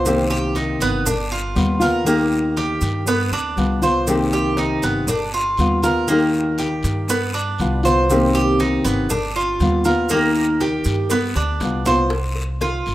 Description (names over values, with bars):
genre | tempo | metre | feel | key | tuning
latin, Cuban son and guajira | 119 BPM | 4/4 | straight | C minor | A4 = 443 Hz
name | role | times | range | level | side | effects
nylon-string guitar | accompaniment | 0.0-12.1 s | C3 to G4 | -19 LUFS | left 1 dB | none
Cuban tres | arpeggios | 0.0-12.9 s | Bb3 to C5 | -21 LUFS | right 3 dB | none
upright bass | bass | 0.0-12.9 s | G1 to G2 | -24 LUFS | equal | none
congas | percussion | 0.1-12.9 s | none | -30 LUFS | left 1 dB | none
cowbell and bongos | percussion | 0.1-12.9 s | none | -29 LUFS | left 3 dB | none
guiro | percussion | 0.1-12.9 s | none | -35 LUFS | left 4 dB | none
maracas | percussion | 0.1-12.1 s | none | -30 LUFS | right 4 dB | none
room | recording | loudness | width
light reverb, small room ambience | rough home demo mix | -16 LUFS | side -15 dB against mid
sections
0.0-12.1 A section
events
drum fill 11.4-12.1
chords
0.1 Cm7; 1.1 G7; 2.1 Eb; 3.1 G7; 4.1 Cm7; 5.1 G7; 6.1 Eb; 7.1 G7; 8.1 Cm7; 9.1 G7; 10.1 Eb; 11.1 G7; 12.1 C5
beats
| 0.06 0.56 1.06 1.56 | 2.07 2.57 3.07 3.57 | 4.08 4.58 5.08 5.58 | 6.09 6.59 7.09 7.59 | 8.10 8.60 9.10 9.60 | 10.11 10.61 11.11 11.61 | 12.12 12.62